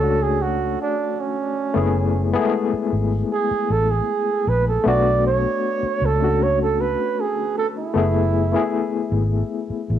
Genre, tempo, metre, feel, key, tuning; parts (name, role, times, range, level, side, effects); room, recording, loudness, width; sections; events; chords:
lush 1970s-style soul; 77 BPM; 4/4; straight; B dorian; A4 = 439 Hz
breathy flugelhorn; melody; 0.0-8.9 s; C#4 to D5; -22 LUFS; right 5 dB; analog delay
barky reed electric piano; accompaniment; 0.0-10.0 s; G#3 to C#5; -23 LUFS; left 6 dB; overdrive, fast tremolo, cassette tape
vintage muted fingered electric bass; bass; 0.0-10.0 s; F#1 to C#2; -22 LUFS; equal
moderate small room reverb, RT60 0.5 s; home recording on cassette; -18 LUFS; side -10 dB against mid
0.0-10.0 A section
flugelhorn solo 0.0-10.0
0.0 Bm9 (rootless); 1.8 F#m11; 4.9 Bm9; 8.0 F#m11